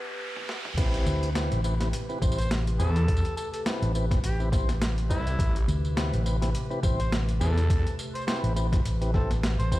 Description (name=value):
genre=glitch hop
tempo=104 BPM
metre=4/4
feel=swing 56% on 16ths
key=A minor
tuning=A4 = 441 Hz
part: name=warbly tape-like pad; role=sustained chords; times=0.0-9.8 s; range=C3 to B4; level=-38 LUFS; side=right 1 dB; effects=chorus, built-in reverb, sidechain pumping
part: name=riser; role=sound effects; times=0.0-0.8 s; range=none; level=-37 LUFS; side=right 1 dB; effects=none
part: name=boom bap sampler-style drum kit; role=drums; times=0.4-9.8 s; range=crash cymbal, hi-hat, snare drum, tambourine, toms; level=-34 LUFS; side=equal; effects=overdrive
part: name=mellow tonewheel organ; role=stabs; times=0.8-9.8 s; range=C4 to C5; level=-34 LUFS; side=left 1 dB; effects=slow rotary speaker, sidechain pumping, tape echo
part: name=phased detuned saw bass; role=bass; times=0.8-7.8 s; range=A1 to E2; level=-25 LUFS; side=equal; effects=phaser, tube saturation
part: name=electronic kick drum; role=drums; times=0.8-9.8 s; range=none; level=-26 LUFS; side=equal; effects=overdrive
part: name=hollow-body short-scale fingered electric bass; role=bass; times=1.1-9.8 s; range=A1 to D2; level=-26 LUFS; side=equal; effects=none
part: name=overdriven harmonica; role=melody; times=2.4-9.8 s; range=E4 to C5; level=-36 LUFS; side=left 1 dB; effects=tape echo
room=little or no reverb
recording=played on a big sound system in a bare room, stone room reverb, vinyl crackle, high-pass filter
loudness=-24 LUFS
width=side -16 dB against mid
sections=0.8-9.8 A section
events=break 0.0-0.8; riser 0.0-0.8; drum fill 0.2-0.8; drop 0.8-9.8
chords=0.0 Am9 (rootless); 0.8 Am9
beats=0.20 | 0.78 1.35 1.93 2.51 | 3.08 3.66 4.24 4.81 | 5.39 5.97 6.54 7.12 | 7.70 8.28 8.85 9.43